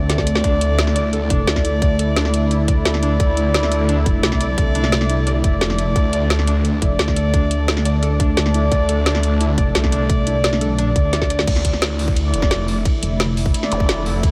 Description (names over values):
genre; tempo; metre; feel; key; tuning
dark technical drum and bass; 174 BPM; 4/4; straight; D minor; A4 = 436 Hz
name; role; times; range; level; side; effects
sweeping resonant pad; sustained chords; 0.0-14.3 s; D3 to E4; -26 LUFS; equal; chorus, sidechain pumping
mellow brass ensemble; stabs; 0.0-14.1 s; A3 to D5; -26 LUFS; equal; delay
pulsing pluck wobble bass; bass; 0.0-13.5 s; F1 to D2; -22 LUFS; equal; chorus
drum and bass drum kit; drums; 0.1-14.3 s; crash cymbal, hi-hat, ride cymbal, snare drum; -26 LUFS; equal; none
electronic kick drum; drums; 0.2-14.3 s; none; -21 LUFS; equal; none
felt-muted upright piano; arpeggios; 0.4-11.4 s; D4 to D5; -31 LUFS; equal; sidechain pumping, delay
snarling distorted saw bass; bass; 0.4-14.3 s; F1 to D2; -22 LUFS; equal; distortion, overdrive, sidechain pumping
zap; sound effects; 13.7-13.8 s; none; -34 LUFS; equal; none
room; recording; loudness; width
moderate huge ambient reverb, RT60 8.1 s; dreamy mix soaked in reverb; -18 LUFS; mono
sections
0.0-11.5 A section; 11.5-14.3 A section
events
drop 0.0-11.5, 11.5-14.3; drum fill 0.1-0.4, 11.1-11.5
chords
0.0 D5